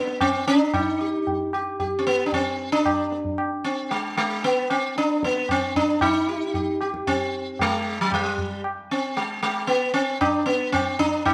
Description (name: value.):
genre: indian classical, Hindustani.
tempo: 114 BPM.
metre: 5/4.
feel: straight.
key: G raga bhairav.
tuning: A4 = 441 Hz.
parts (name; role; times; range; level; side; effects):
sitar; melody; 0.0-11.3 s; F#3 to G4; -24 LUFS; equal; none.
tabla; percussion; 0.1-11.3 s; none; -30 LUFS; equal; none.
room: light reverb.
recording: close, detailed microphones.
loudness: -24 LUFS.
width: mono.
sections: 0.0-11.3 A section.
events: none.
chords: none.